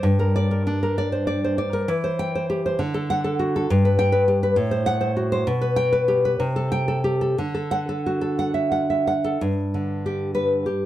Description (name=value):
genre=romantic piece for solo classical guitar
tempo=57-70 BPM (dotted quarters)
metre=6/8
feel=rubato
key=G major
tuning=A4 = 440 Hz
part: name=nylon-string guitar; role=solo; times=0.0-10.9 s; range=G2 to G5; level=-20 LUFS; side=equal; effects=none
room=light reverb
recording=dark, warm production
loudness=-20 LUFS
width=side -13 dB against mid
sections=0.0-9.4 A section; 9.4-10.9 B section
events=none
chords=0.1 Gm; 1.9 C/E; 2.8 D; 3.7 G; 4.6 Am6; 5.5 G/B; 6.4 Am7/C; 7.4 D; 9.4 G